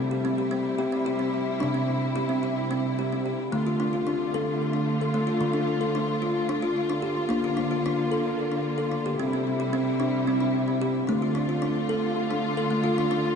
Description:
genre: world meditative, meditative tuned percussion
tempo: 222 BPM (eighths)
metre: 7/8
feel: straight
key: D minor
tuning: A4 = 440 Hz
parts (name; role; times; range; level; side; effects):
- rich studio string section; sustained chords; 0.0-13.4 s; C3 to F4; -28 LUFS; equal; shimmer reverb
- kalimba; arpeggios; 0.0-13.4 s; C3 to A4; -26 LUFS; left 1 dB; ping-pong delay, shimmer reverb
room: wet echo chamber reverb, RT60 2.2 s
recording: dark, warm production, nothing above 10.3 kHz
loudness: -24 LUFS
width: side -6 dB against mid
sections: 0.0-3.5 A section; 3.5-13.4 B section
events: none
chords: 0.0 C; 3.5 Dm; 7.3 Bb; 9.2 C; 11.1 Dm

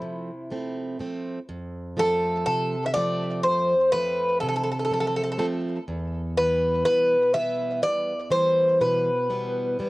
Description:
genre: greek folk, Greek bouzouki band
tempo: 123 BPM (eighths)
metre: 9/8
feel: straight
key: unclear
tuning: A4 = 441 Hz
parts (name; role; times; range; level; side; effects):
- Greek bouzouki; melody; 0.0-9.9 s; E4 to E5; -22 LUFS; equal; tape echo
- picked plugged-in steel-string acoustic guitar; accompaniment; 0.0-9.9 s; E2 to C4; -29 LUFS; right 1 dB; cassette tape
room: light reverb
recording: home recording on cassette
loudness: -22 LUFS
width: side -20 dB against mid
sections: 0.0-1.5 A section; 1.5-9.9 B section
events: none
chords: 0.0 F; 5.9 Em

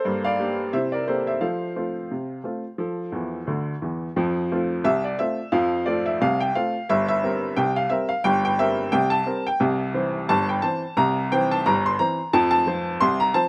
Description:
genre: ragtime piano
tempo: 88 BPM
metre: 2/4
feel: swing 56% on 16ths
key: F major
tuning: A4 = 440 Hz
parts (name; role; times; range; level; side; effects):
- clear upright piano; solo; 0.0-13.5 s; G1 to C6; -20 LUFS; equal; none
room: little or no reverb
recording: recorded outdoors, with no room sound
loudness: -20 LUFS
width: side -30 dB against mid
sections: 0.0-4.2 A section; 4.2-13.5 B section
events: upright piano fill 3.1-4.2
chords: 0.1 Gm; 0.7 C7; 1.4 F; 6.9 C5/G; 9.6 C; 12.3 F5

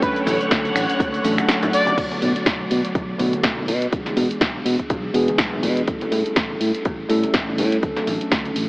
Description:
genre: filtered disco house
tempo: 123 BPM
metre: 4/4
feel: swing 56% on 16ths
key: B dorian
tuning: A4 = 440 Hz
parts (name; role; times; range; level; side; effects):
- analog synth brass; melody; 0.0-2.0 s; B4 to D5; -26 LUFS; equal; chorus, sidechain pumping, low-pass filter, analog delay
- bell-like tine electric piano; accompaniment; 0.0-8.7 s; D3 to A4; -24 LUFS; equal; phaser, vintage 12-bit sampler grit, sidechain pumping, low-pass filter
- phased string machine; sustained chords; 0.0-2.0 s; D3 to F#5; -27 LUFS; equal; ensemble chorus, phaser, sidechain pumping, low-pass filter
- modern bright fingered electric bass; bass; 0.0-8.7 s; A1 to B2; -23 LUFS; equal; sidechain pumping, low-pass filter
- electronic kick drum; drums; 0.0-8.4 s; none; -25 LUFS; equal; none
- punchy analog drum machine; drums; 0.0-8.7 s; cabasa, crash cymbal, finger snaps, hi-hat, snare drum; -24 LUFS; equal; sidechain pumping on hats, sidechain pumping on perc, sidechain pumping on cymbals
- egg shaker and congas; percussion; 0.0-8.7 s; none; -31 LUFS; equal; sidechain pumping on perc, low-pass filter on perc
room: moderate huge ambient reverb, RT60 7.8 s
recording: dreamy mix soaked in reverb, AM radio sound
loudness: -18 LUFS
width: side -24 dB against mid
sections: 0.0-2.0 A section; 2.0-8.7 B section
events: drop 0.0-2.0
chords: 0.0 Dmaj7; 2.0 Bm7; 3.7 E7/B; 5.9 A7; 7.8 Dmaj7

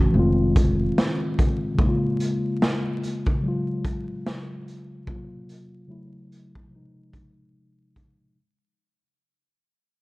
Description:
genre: lo-fi hip hop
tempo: 73 BPM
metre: 4/4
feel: swing 61% on 16ths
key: unclear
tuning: A4 = 440 Hz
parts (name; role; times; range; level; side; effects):
- mellow tine electric piano; accompaniment; 0.0-8.4 s; C3 to Gb4; -26 LUFS; left 1 dB; cassette tape, low-pass filter
- upright bass; bass; 0.0-0.9 s; F1; -24 LUFS; equal; none
- raw garage drum kit; drums; 0.6-8.2 s; hi-hat, kick drum, snare drum; -23 LUFS; equal; none
room: light reverb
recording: dark, warm production, vinyl crackle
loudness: -21 LUFS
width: side -22 dB against mid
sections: 0.0-8.4 A section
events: fade-out 0.0-8.4; filter sweep on tine electric piano 0.0-8.4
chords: 0.1 Fm7; 1.8 Db6; 3.4 Dbadd11; 5.1 Gbmaj7#11/C; 5.9 Gbm7; 6.7 Fm7

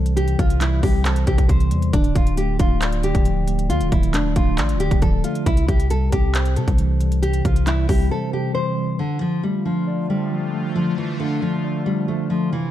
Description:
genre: hip hop, trap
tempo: 136 BPM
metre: 4/4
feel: half-time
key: D minor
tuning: A4 = 440 Hz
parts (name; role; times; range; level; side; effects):
- nylon-string guitar; melody; 0.0-12.7 s; D3 to C5; -24 LUFS; left 1 dB; low-pass filter
- mellow tine electric piano; accompaniment; 0.0-12.7 s; C3 to D5; -24 LUFS; equal; slow stereo tremolo, low-pass filter
- long sustained 808-style bass; bass; 0.0-8.1 s; D1 to C3; -20 LUFS; equal; none
- trap drum kit; drums; 0.1-8.0 s; handclaps, hi-hat, kick drum; -20 LUFS; equal; none
- sweeping resonant pad; sustained chords; 9.0-12.7 s; C3 to F4; -31 LUFS; right 1 dB; chorus
room: light reverb, digital ambience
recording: dark, warm production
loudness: -17 LUFS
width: side -12 dB against mid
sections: 0.0-9.0 A section; 9.0-12.7 B section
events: break 8.1-9.0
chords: 0.0 C; 1.9 Dm; 5.5 C; 9.0 Dm

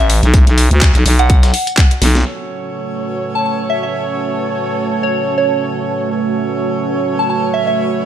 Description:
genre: bass house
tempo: 125 BPM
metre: 4/4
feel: swing 56% on 16ths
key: F# minor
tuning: A4 = 440 Hz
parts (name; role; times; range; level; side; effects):
- soft synth bell; melody; 0.0-7.7 s; C#5 to A5; -19 LUFS; equal; chorus, phaser, ping-pong delay
- dark analog pad; sustained chords; 2.3-8.1 s; A3 to C#5; -21 LUFS; right 5 dB; chorus, sidechain pumping
- growling FM bass; bass; 0.0-2.2 s; A1 to D2; -11 LUFS; equal; tube saturation, sidechain pumping
- electronic tambourine and snare drum; drums; 0.1-2.1 s; none; -26 LUFS; equal; none
- garage drum kit; drums; 0.1-2.2 s; handclaps, hi-hat, snare drum; -18 LUFS; equal; low-pass filter on hats, low-pass filter on snare
- electronic kick drum; drums; 0.3-1.9 s; none; -10 LUFS; equal; none
- warm horn section; stabs; 2.3-8.1 s; C#4 to C#5; -22 LUFS; right 2 dB; sidechain pumping, ping-pong delay
- ethereal airy pad; texture; 2.7-8.1 s; F#4 to B5; -24 LUFS; right 1 dB; ensemble chorus, built-in reverb, sidechain pumping
room: light reverb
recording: none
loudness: -12 LUFS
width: side -10 dB against mid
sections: 0.0-2.3 A section; 2.3-8.1 B section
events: drop 0.0-2.3; drum fill 2.0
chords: 0.0 Bm; 2.3 F#m

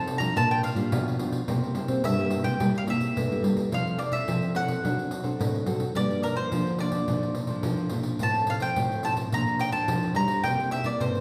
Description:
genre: samba and choro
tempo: 107 BPM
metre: 4/4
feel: straight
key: F major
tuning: A4 = 440 Hz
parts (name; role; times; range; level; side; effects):
- mandolin; melody; 0.0-11.2 s; Bb4 to Bb5; -31 LUFS; equal; none
- nylon-string guitar; accompaniment; 0.0-11.2 s; F2 to A4; -33 LUFS; equal; none
- nylon-string guitar; bass; 0.0-11.2 s; A2 to C4; -32 LUFS; equal; none
- pandeiro; percussion; 0.1-11.2 s; none; -34 LUFS; equal; none
room: wet recital hall reverb, RT60 1.2 s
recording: recorded in a church or concert hall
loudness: -27 LUFS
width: mono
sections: 0.0-3.7 A section; 3.7-11.2 B section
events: none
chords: 0.4 Bb6; 1.5 C7; 3.7 Fmaj7; 4.8 D7/F#; 6.0 Gm7; 7.1 Bbmaj7; 8.2 Fmaj7/A; 9.3 Bbmaj7; 10.4 C7

